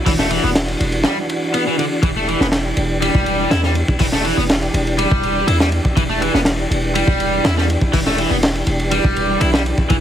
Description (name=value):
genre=breakbeat, breaks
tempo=122 BPM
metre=4/4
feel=straight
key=E minor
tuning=A4 = 439 Hz
part: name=tonewheel organ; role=sustained chords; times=0.0-10.0 s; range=E3 to G4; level=-23 LUFS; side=equal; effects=overdrive, chorus vibrato, slow rotary speaker, sidechain pumping
part: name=overdriven semi-hollow guitar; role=riff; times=0.1-10.0 s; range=D3 to E4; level=-20 LUFS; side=equal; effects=ping-pong delay
part: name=warm 808-style bass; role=bass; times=0.1-10.0 s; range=E1 to E2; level=-21 LUFS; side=equal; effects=none
part: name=crunchy breakbeat drum kit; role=drums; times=0.1-10.0 s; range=hi-hat, kick drum, ride cymbal, snare drum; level=-18 LUFS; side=equal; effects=none
room=light reverb, small room reverb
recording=heavily compressed radio sound, multiband compression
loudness=-14 LUFS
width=side -10 dB against mid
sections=0.0-10.0 A section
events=none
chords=0.0 Em7